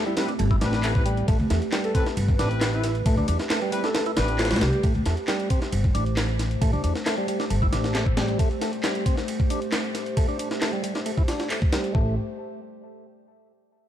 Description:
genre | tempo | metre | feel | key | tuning
breakbeat, breaks | 135 BPM | 4/4 | straight | A minor | A4 = 440 Hz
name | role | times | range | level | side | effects
dark analog pad | sustained chords | 0.0-12.2 s | A3 to C5 | -31 LUFS | equal | chorus, sidechain pumping
percussive tonewheel organ | riff | 0.0-12.2 s | G3 to E4 | -31 LUFS | right 1 dB | slow rotary speaker, vintage 12-bit sampler grit, low-pass filter, tape echo
breathy flute-like synth lead | melody | 0.1-4.8 s | E4 to A4 | -33 LUFS | right 1 dB | chorus, telephone sound, tape echo
punchy analog drum machine | drums | 0.1-11.9 s | handclaps, hi-hat | -35 LUFS | equal | none
clear brass ensemble | stabs | 0.2-4.6 s | C4 to B4 | -33 LUFS | left 4 dB | vintage 12-bit sampler grit, tape echo
breakbeat sampler-style drum kit | drums | 0.2-12.1 s | kick drum, ride cymbal, snare drum | -25 LUFS | equal | none
upright bass | bass | 0.4-8.3, 11.9-12.2 s | G1 to A2 | -24 LUFS | equal | none
room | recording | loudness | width
light reverb | dark, warm production | -22 LUFS | side -11 dB against mid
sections
0.0-4.8 A section; 4.8-11.9 B section; 11.9-13.7 C section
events
drop 0.0-4.8; band accent 4.4; filter sweep on tonewheel organ 4.8-11.9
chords
0.0 Am7

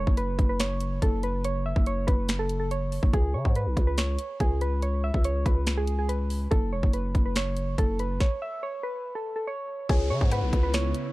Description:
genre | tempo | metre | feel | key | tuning
hip hop, trap | 142 BPM | 4/4 | half-time | C# minor | A4 = 439 Hz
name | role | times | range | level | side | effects
soft electric-piano-like synth keys | melody | 0.0-11.1 s | G#4 to E5 | -31 LUFS | right 1 dB | chorus
growling 808-style bass | bass | 0.0-10.9 s | E1 to C#3 | -28 LUFS | equal | none
trap drum kit | drums | 0.1-11.0 s | finger snaps, hi-hat, kick drum, snare drum | -25 LUFS | equal | none
mallet-like synth pluck | second line | 9.9-11.1 s | C#5 to F#5 | -36 LUFS | left 3 dB | chorus, digital delay
airy breathy pad | sustained chords | 10.1-11.1 s | C#3 to E4 | -35 LUFS | right 1 dB | chorus
downlifter | sound effects | 9.9-11.1 s | none | -40 LUFS | equal | none
room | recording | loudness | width
little or no reverb | dark, warm production | -24 LUFS | side -19 dB against mid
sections
0.0-9.9 A section; 9.9-11.1 B section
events
stop 8.2-9.9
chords
0.0 F#5; 3.1 C#5; 6.5 F#5; 9.9 C#m7

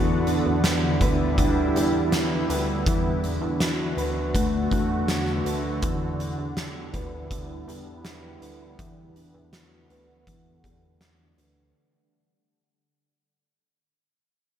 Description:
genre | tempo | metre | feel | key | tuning
dream pop | 81 BPM | 4/4 | straight | E minor | A4 = 439 Hz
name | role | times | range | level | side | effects
shimmering ambient pad | sustained chords | 0.0-11.7 s | D3 to F#5 | -27 LUFS | right 1 dB | chorus, built-in reverb, low-pass filter
mellow electric guitar | arpeggios | 0.0-12.3 s | E3 to B4 | -29 LUFS | left 2 dB | lush chorus, low-pass filter, digital delay
chorused synth bass | bass | 0.0-11.7 s | D2 to E2 | -30 LUFS | equal | none
oversized low-tuned drum kit | drums | 0.3-11.6 s | hi-hat, kick drum, snare drum | -27 LUFS | equal | gated reverb
room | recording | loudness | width
moderate plate reverb, RT60 2.4 s | bright 1980s-style digital production | -22 LUFS | side -9 dB against mid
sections
0.0-11.7 A section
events
fade-out 0.0-11.7; filter sweep 0.0-11.7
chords
0.0 Em7; 2.9 Bm7; 5.8 Em7; 8.8 Bm7/E; 10.3 Em11

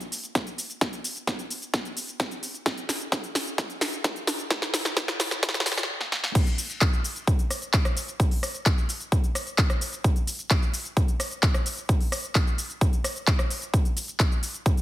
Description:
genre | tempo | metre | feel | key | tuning
EDM | 130 BPM | 4/4 | straight | none | none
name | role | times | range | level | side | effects
big-room dance drum kit | drums | 0.0-14.8 s | crash cymbal, handclaps, hi-hat, rim click, shaker, snare drum | -28 LUFS | equal | none
electronic kick drum | drums | 0.4-14.8 s | none | -23 LUFS | equal | high-pass filter on kick, high-pass filter on room
room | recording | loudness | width
light reverb | heavily compressed radio sound, multiband compression, high-pass filter | -24 LUFS | side -15 dB against mid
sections
0.0-6.4 A section; 6.4-14.8 B section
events
build-up 0.0-6.4; drum fill 0.0-5.9, 6.0-6.4; stop 5.9-6.4; drop 6.4-14.8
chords
none

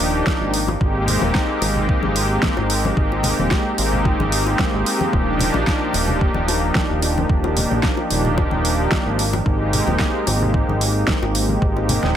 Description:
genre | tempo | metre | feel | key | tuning
nu-disco, nu disco | 111 BPM | 4/4 | straight | unclear | A4 = 437 Hz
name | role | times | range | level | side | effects
warm analog pad | accompaniment | 0.0-12.2 s | F3 to G4 | -20 LUFS | equal | chorus, digital delay
fat analog bass | bass | 0.0-12.1 s | Eb1 to Bb1 | -22 LUFS | equal | tube saturation
pop drum kit | drums | 0.0-12.1 s | hi-hat, snare drum | -24 LUFS | right 1 dB | overdrive
electronic kick drum | drums | 0.3-11.7 s | none | -21 LUFS | equal | none
congas and bongos | percussion | 0.3-12.1 s | none | -27 LUFS | left 3 dB | none
room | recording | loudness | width
light reverb | none | -16 LUFS | side -10 dB against mid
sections
0.0-12.2 A section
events
none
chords
0.0 Ebmaj9; 0.5 Abmaj7; 5.1 Ebmaj9; 9.2 Abmaj7

